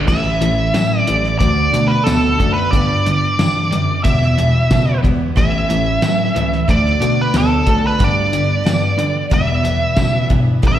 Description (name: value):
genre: classic rock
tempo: 91 BPM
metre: 4/4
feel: straight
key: E dorian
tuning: A4 = 440 Hz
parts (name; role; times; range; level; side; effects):
- cranked stack guitar; riff; 0.0-10.8 s; E2 to B3; -21 LUFS; right 8 dB; overdrive
- crunchy overdriven guitar; riff; 0.0-10.8 s; E2 to B3; -20 LUFS; left 6 dB; spring reverb, slapback echo
- bell-like tine electric piano; bass; 0.0-10.8 s; A1 to D3; -21 LUFS; equal; medium stereo tremolo
- nasal lead guitar with a parked wah; melody; 0.1-10.8 s; A4 to E5; -18 LUFS; right 1 dB; overdrive, slapback echo
- picked steel-string acoustic guitar; accompaniment; 0.1-10.8 s; E2 to G4; -26 LUFS; right 1 dB; slapback echo
- cloth-damped thuddy drum kit; drums; 0.1-10.8 s; crash cymbal, hi-hat, kick drum, snare drum, tambourine; -18 LUFS; equal; none
room: studio ambience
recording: live gig heard through the venue's PA, recital hall reverb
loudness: -13 LUFS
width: side -11 dB against mid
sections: 0.1-10.8 A section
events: none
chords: 0.1 A; 1.4 D; 2.7 G; 4.0 Em; 5.4 A; 6.7 D; 8.0 G; 9.3 Em